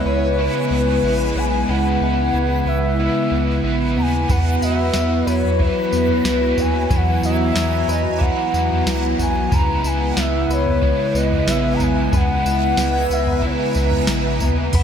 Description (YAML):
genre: dream pop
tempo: 92 BPM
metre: 4/4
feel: straight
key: unclear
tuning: A4 = 440 Hz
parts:
  - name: bass bansuri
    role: melody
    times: 0.0-14.8 s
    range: B4 to A#5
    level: -23 LUFS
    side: left 2 dB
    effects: diffuse ambient delay
  - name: biting overdriven guitar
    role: accompaniment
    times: 0.0-14.8 s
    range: C#3 to B4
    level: -27 LUFS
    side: right 2 dB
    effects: harmonic tremolo, analog chorus
  - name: hollow soft pad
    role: sustained chords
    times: 0.0-14.8 s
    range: C#3 to A#5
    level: -22 LUFS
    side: right 1 dB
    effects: chorus
  - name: direct-recorded clean electric guitar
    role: arpeggios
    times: 0.0-14.8 s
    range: C#3 to B4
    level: -25 LUFS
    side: left 4 dB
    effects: wide subtle chorus, diffuse ambient delay
  - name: backwards swelling texture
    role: texture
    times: 0.0-14.8 s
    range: D#5 to B5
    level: -31 LUFS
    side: right 3 dB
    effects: built-in reverb, diffuse ambient delay
  - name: round analog bass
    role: bass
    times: 0.1-14.8 s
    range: A#1 to E2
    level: -22 LUFS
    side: equal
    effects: none
  - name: soft vintage rhythm box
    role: drums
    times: 4.3-14.8 s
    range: crash cymbal, kick drum, snare drum, tambourine, toms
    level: -22 LUFS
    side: right 1 dB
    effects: none
room: moderate plate reverb, RT60 2.5 s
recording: dreamy mix soaked in reverb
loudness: -16 LUFS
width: side -8 dB against mid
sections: 0.0-14.7 A section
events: none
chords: 0.0 C#m7; 4.3 Esus2; 9.5 C#m7